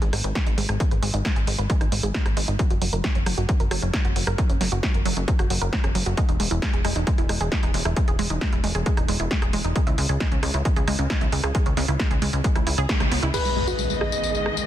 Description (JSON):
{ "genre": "uplifting trance", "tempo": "134 BPM", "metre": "4/4", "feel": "straight", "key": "unclear", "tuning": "A4 = 439 Hz", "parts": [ { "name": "wide unison pluck", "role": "arpeggios", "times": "0.0-13.3 s", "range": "F#3 to B4", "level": "-29 LUFS", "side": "right 3 dB", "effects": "sidechain pumping, dub echo" }, { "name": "plucky analog bass", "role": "bass", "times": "0.0-13.3 s", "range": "E1 to C#2", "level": "-25 LUFS", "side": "equal", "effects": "sidechain pumping" }, { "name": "punchy analog drum machine", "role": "drums", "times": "0.0-14.7 s", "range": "crash cymbal, hi-hat, rim click, snare drum, tambourine", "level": "-28 LUFS", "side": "equal", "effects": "sidechain pumping on hats, studio reverb, sidechain pumping on cymbals, sidechain pumping on perc" }, { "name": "electronic kick drum", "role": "drums", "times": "0.4-13.0 s", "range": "none", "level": "-23 LUFS", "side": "equal", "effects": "overdrive, studio reverb" }, { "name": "wide unison pluck", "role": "melody", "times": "13.3-14.7 s", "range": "G#3 to G#4", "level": "-31 LUFS", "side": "right 2 dB", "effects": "sidechain pumping, dub echo" }, { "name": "warm concert grand piano", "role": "second line", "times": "13.3-14.6 s", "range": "B4 to D#5", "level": "-26 LUFS", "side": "left 1 dB", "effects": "dub echo" }, { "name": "warm studio string section", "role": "sustained chords", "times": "13.3-14.7 s", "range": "D#3 to D#5", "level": "-28 LUFS", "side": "left 1 dB", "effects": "sidechain pumping" }, { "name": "impact", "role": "sound effects", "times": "13.3-14.7 s", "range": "none", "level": "-28 LUFS", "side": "equal", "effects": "none" } ], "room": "light reverb, digital ambience", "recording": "dense, heavily limited modern master", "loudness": "-20 LUFS", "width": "side -12 dB against mid", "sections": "0.0-13.3 A section; 13.3-14.7 B section", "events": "filter sweep on synth arpeggio sound 0.0-13.3; band accent 12.9; impact 13.3-14.7", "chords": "0.0 N.C.; 6.2 E; 9.8 C#m; 13.3 G#m" }